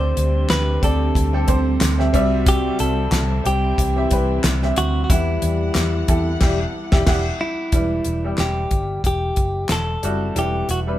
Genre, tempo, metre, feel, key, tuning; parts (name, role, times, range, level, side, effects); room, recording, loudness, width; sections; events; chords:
piano-driven pop; 91 BPM; 4/4; swing 56% on 16ths; E minor; A4 = 440 Hz
direct-recorded clean electric guitar; melody; 0.0-10.8 s; E4 to C5; -24 LUFS; left 1 dB
mellow French horn section; second line; 0.0-7.3 s; E3 to G4; -29 LUFS; left 3 dB
bright upright piano; accompaniment; 0.0-11.0 s; C3 to G5; -24 LUFS; right 2 dB
warm studio string section; sustained chords; 0.0-7.7 s; C3 to F#5; -32 LUFS; equal
vintage muted fingered electric bass; bass; 0.0-11.0 s; E1 to E2; -21 LUFS; equal
damped 70s drum kit; drums; 0.2-10.9 s; crash cymbal, handclaps, hi-hat, kick drum, snare drum; -20 LUFS; equal
moderate studio reverb, RT60 0.7 s; band playing live in one room; -17 LUFS; side -13 dB against mid
0.0-7.7 A section; 7.7-11.0 B section
band accent 6.4-7.7
0.0 D7sus4; 2.1 C; 5.1 Emadd9